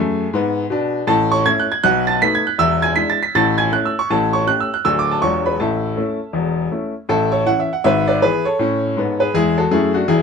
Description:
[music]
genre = jazz, stride piano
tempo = 160 BPM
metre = 4/4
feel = swing 62% on 8ths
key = A major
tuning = A4 = 440 Hz
[part]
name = bright upright piano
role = solo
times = 0.0-10.2 s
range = D1 to B6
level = -15 LUFS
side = equal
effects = none
[sound]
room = light reverb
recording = close, detailed microphones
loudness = -15 LUFS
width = side -6 dB against mid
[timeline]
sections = 0.0-7.1 A section; 7.1-10.2 A section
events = none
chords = 0.0 E; 1.1 A; 1.8 B7; 2.6 E7; 3.3 A; 4.1 A7; 4.8 D; 5.2 E7b9; 5.6 A; 7.8 E/G#; 8.6 A

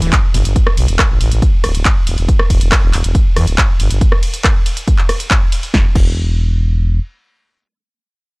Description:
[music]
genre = driving peak-time techno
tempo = 139 BPM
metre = 4/4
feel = straight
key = E minor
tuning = A4 = 441 Hz
[part]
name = growling FM bass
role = bass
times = 0.0-7.0 s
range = D1 to E2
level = -14 LUFS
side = equal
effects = tube saturation, sidechain pumping
[part]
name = techno drum kit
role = drums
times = 0.0-6.1 s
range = crash cymbal, handclaps, hi-hat, ride cymbal, rim click, snare drum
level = -18 LUFS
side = equal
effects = sidechain pumping on hats, sidechain pumping on cymbals
[part]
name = electronic kick drum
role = drums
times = 0.1-6.1 s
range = none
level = -13 LUFS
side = equal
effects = none
[sound]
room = little or no reverb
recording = dry, gritty hardware recording, cassette tape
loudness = -11 LUFS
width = side -29 dB against mid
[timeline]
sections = 0.0-5.7 A section; 5.7-8.4 B section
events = drop 0.0-5.7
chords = none

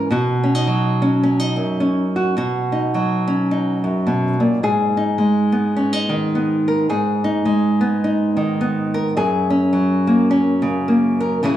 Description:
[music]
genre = folk, solo fingerstyle acoustic guitar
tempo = 106 BPM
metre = 4/4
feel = swing 59% on 8ths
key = unclear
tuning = A4 = 442 Hz
[part]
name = nylon-string guitar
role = solo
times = 0.0-11.6 s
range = F#2 to A#4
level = -16 LUFS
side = equal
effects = none
[sound]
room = moderate concert hall reverb, RT60 1.8 s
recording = small room reverb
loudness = -16 LUFS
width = side -12 dB against mid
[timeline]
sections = 0.0-11.6 A section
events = none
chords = 0.1 Badd9; 4.6 G#m; 9.2 F#add9

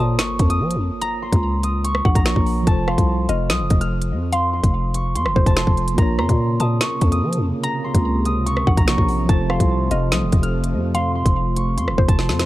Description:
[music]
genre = hip hop, drill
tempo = 145 BPM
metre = 4/4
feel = half-time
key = Bb harmonic minor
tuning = A4 = 440 Hz
[part]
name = concert harp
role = melody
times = 0.0-12.5 s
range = C5 to F6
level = -25 LUFS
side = right 1 dB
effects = tape echo
[part]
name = mallet-like synth pluck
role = second line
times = 0.0-12.2 s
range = C5 to Bb5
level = -30 LUFS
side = left 3 dB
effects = chorus, tape echo
[part]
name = mellow tine electric piano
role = accompaniment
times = 0.0-12.5 s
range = F3 to Db5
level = -27 LUFS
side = right 1 dB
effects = medium stereo tremolo
[part]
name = growling 808-style bass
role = bass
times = 0.0-12.5 s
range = F1 to F3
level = -21 LUFS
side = equal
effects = none
[part]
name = impact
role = sound effects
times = 0.0-1.0 s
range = none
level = -34 LUFS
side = equal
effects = none
[part]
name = drill drum kit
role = drums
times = 0.2-12.5 s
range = finger snaps, hi-hat, kick drum, rim click, snare drum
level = -18 LUFS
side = equal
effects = none
[part]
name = dark analog pad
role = sustained chords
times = 6.0-12.5 s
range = C3 to Bb3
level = -26 LUFS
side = right 1 dB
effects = chorus
[sound]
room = little or no reverb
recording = dark, warm production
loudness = -16 LUFS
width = side -16 dB against mid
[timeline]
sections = 0.0-12.5 A section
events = impact 0.0-1.0; drum fill 12.2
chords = 0.0 Bbmadd9; 2.7 F; 6.0 Bbmadd9; 9.3 F

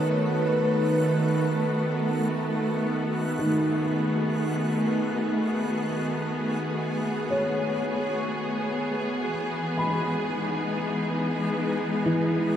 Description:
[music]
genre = ambient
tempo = 70 BPM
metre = 4/4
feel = straight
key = E major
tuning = A4 = 441 Hz
[part]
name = breathy flute-like synth lead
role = melody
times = 0.0-2.0 s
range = B4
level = -33 LUFS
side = left 1 dB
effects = analog chorus, tape echo
[part]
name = clear studio string section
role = sustained chords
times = 0.0-12.6 s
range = E3 to A4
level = -26 LUFS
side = equal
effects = none
[part]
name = felt-muted upright piano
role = arpeggios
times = 0.0-12.6 s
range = D#3 to B5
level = -31 LUFS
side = equal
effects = tape echo
[part]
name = bowed-like drone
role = drone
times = 0.0-12.6 s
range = D#3 to G#3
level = -30 LUFS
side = right 2 dB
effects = built-in reverb
[part]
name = backwards swelling texture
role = texture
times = 0.0-12.6 s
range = F#6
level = -46 LUFS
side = equal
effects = built-in reverb
[sound]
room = wet shimmer reverb, RT60 8.0 s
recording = dark, warm production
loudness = -24 LUFS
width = side -10 dB against mid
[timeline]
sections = 0.0-9.3 A section; 9.3-12.6 B section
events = fade-out on synth texture 0.0-9.3; filter sweep on string section 0.0-9.3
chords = 0.0 B7; 9.3 Emaj7

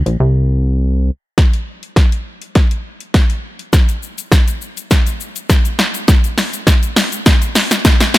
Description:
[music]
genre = dance-pop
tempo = 102 BPM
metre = 4/4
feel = straight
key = unclear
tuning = A4 = 442 Hz
[part]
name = chorused synth bass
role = bass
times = 0.0-1.1 s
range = Bb1 to C2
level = -12 LUFS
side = equal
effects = sidechain pumping
[part]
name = house drum kit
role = drums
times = 0.1-8.2 s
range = hi-hat, kick drum, shaker, snare drum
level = -11 LUFS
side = equal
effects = none
[sound]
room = little or no reverb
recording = none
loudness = -12 LUFS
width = side -17 dB against mid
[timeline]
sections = 0.0-1.4 A section; 1.4-8.2 B section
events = silent gap 0.2-1.4; build-up 1.4-8.2; drum fill 1.4-8.2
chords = none

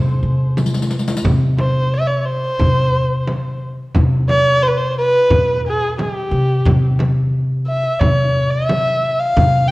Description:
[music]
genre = Persian modal ensemble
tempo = 89 BPM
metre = 4/4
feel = straight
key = C dastgah chahargah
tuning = A4 = 439 Hz
[part]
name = warm kamancheh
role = melody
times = 0.0-9.7 s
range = G4 to G5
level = -17 LUFS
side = equal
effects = none
[part]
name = santur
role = second line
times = 0.0-0.9 s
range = Ab4+45c to C5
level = -41 LUFS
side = right 5 dB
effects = slapback echo
[part]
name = upright bass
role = bass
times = 0.0-9.7 s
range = B2 to C3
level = -18 LUFS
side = equal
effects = none
[part]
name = frame drum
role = percussion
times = 0.6-9.5 s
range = none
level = -23 LUFS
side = right 1 dB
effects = none
[part]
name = riq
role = percussion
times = 0.6-1.2 s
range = none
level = -24 LUFS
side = left 2 dB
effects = none
[part]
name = tombak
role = percussion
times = 0.6-9.5 s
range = none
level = -22 LUFS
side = left 1 dB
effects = none
[sound]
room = moderate recital hall reverb, RT60 1.6 s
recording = worn, warbling old tape, cassette tape, warbly pitch drift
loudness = -14 LUFS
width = side -20 dB against mid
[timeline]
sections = 0.0-1.2 A section; 1.2-9.7 B section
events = drum fill 0.6-1.2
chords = none

